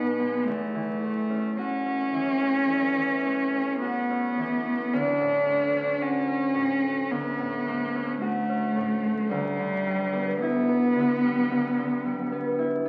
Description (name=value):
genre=classical, impressionist duo for cello and harp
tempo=54 BPM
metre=4/4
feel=rubato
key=unclear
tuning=A4 = 435 Hz
part: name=rich cello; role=melody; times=0.0-12.6 s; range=G3 to D4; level=-27 LUFS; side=equal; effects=none
part: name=concert harp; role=accompaniment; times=0.0-12.9 s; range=D2 to G#4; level=-32 LUFS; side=equal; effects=none
room=wet recital hall reverb, RT60 1.5 s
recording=very old 78 rpm record, vinyl crackle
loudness=-26 LUFS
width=mono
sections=0.0-12.9 A section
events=none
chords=0.5 F#m9/E; 4.9 Dmaj7; 9.3 Em9/D